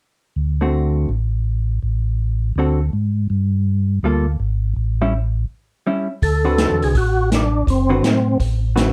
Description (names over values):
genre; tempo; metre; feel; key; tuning
soul jazz organ trio; 164 BPM; 4/4; swing 64% on 8ths; D mixolydian; A4 = 440 Hz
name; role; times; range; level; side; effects
mellow tonewheel organ; bass; 0.4-8.9 s; F#1 to A2; -21 LUFS; equal; chorus vibrato, slow rotary speaker
vintage hollow-body jazz guitar; accompaniment; 0.6-8.9 s; D3 to B4; -22 LUFS; equal; none
percussive tonewheel organ; melody; 6.2-8.4 s; C4 to A4; -22 LUFS; equal; slow rotary speaker, overdrive, chorus vibrato, plate reverb
open jazz drum kit; drums; 6.2-8.9 s; hi-hat, kick drum, snare drum; -23 LUFS; equal; none
room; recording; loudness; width
light reverb; dark, warm production; -19 LUFS; mono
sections
0.4-6.2 A section; 6.2-8.9 B section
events
break 5.5-6.2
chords
0.4 D7; 1.8 N.C.; 2.6 D7; 3.3 Gm9; 4.8 A7; 6.2 D13